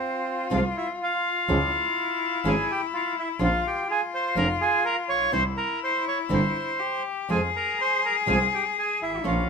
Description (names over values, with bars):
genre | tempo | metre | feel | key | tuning
tango | 124 BPM | 4/4 | rubato | F harmonic minor | A4 = 441 Hz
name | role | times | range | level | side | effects
bandoneon | melody | 0.0-9.5 s | C4 to Db6 | -26 LUFS | right 2 dB | none
rich cello | second line | 0.0-9.5 s | Db4 to Ab4 | -28 LUFS | left 6 dB | none
nylon-string guitar | accompaniment | 0.5-9.3 s | C3 to F4 | -28 LUFS | right 2 dB | none
clear double bass | bass | 0.5-9.4 s | F1 to F2 | -27 LUFS | right 1 dB | none
bandoneon | stabs | 7.3-9.4 s | Ab3 to F4 | -34 LUFS | right 6 dB | none
room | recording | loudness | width
light reverb | minimal, uncompressed stereo recording | -22 LUFS | side -5 dB against mid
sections
0.0-9.5 A section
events
none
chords
0.0 F5; 1.5 Db; 3.4 Bbm; 5.3 C; 7.3 Fm